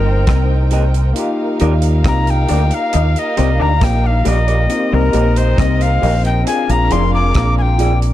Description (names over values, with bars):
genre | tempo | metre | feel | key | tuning
lovers rock reggae | 68 BPM | 4/4 | straight | Eb major | A4 = 439 Hz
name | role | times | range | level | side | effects
breathy bright alto recorder | melody | 0.0-8.0 s | Bb4 to D6 | -20 LUFS | left 3 dB | tape echo
warm studio violin section | second line | 0.0-8.1 s | C4 to G5 | -24 LUFS | right 3 dB | none
overdriven tine electric piano | accompaniment | 0.0-8.1 s | Bb3 to Ab4 | -23 LUFS | left 4 dB | none
twangy electric guitar | riff | 0.0-7.6 s | F3 to Eb4 | -25 LUFS | left 7 dB | analog chorus, tape echo
deep dub fingered electric bass | bass | 0.0-8.1 s | F1 to Eb2 | -14 LUFS | equal | none
damped 70s drum kit | drums | 0.3-8.1 s | hi-hat, kick drum, rim click | -20 LUFS | right 1 dB | none
electric guitar through a small old amp | stabs | 0.7-7.9 s | F4 to Eb5 | -26 LUFS | right 2 dB | spring reverb, tape echo
room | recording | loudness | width
small room ambience | dark, warm production | -12 LUFS | side -13 dB against mid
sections
0.0-8.1 A section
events
recorder solo 0.0-8.1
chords
0.0 Cm7; 1.2 Ebmaj7; 4.7 Cm7; 6.5 Bb7